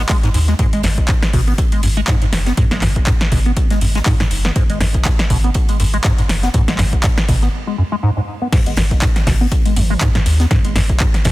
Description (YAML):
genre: acid house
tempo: 121 BPM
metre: 4/4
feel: swing 56% on 16ths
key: G# minor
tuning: A4 = 439 Hz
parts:
  - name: liquid acid bass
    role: riff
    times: 0.0-11.3 s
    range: F#2 to B3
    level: -19 LUFS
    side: equal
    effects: phaser, overdrive, analog chorus, tape echo
  - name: saturated sub bass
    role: bass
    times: 0.0-11.3 s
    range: F#1 to D#2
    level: -18 LUFS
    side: equal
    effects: sidechain pumping
  - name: crisp fusion drum kit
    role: drums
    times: 0.1-11.3 s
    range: hi-hat, ride cymbal, snare drum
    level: -32 LUFS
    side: right 2 dB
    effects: sidechain pumping on cymbals, high-pass filter on cymbals, sidechain pumping on hats, high-pass filter on hats, high-pass filter on snare, high-pass filter on room
  - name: electro analog drum machine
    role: drums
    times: 0.1-11.3 s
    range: crash cymbal, handclaps, hi-hat, snare drum, toms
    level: -21 LUFS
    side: equal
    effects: none
  - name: electronic kick drum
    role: drums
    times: 0.1-11.3 s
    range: none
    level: -16 LUFS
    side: equal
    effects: none
room: small room reverb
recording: dense, heavily limited modern master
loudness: -13 LUFS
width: side -18 dB against mid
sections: 0.0-8.5 A section; 8.5-11.3 B section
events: break 7.5-8.5; drop 8.5-11.3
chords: none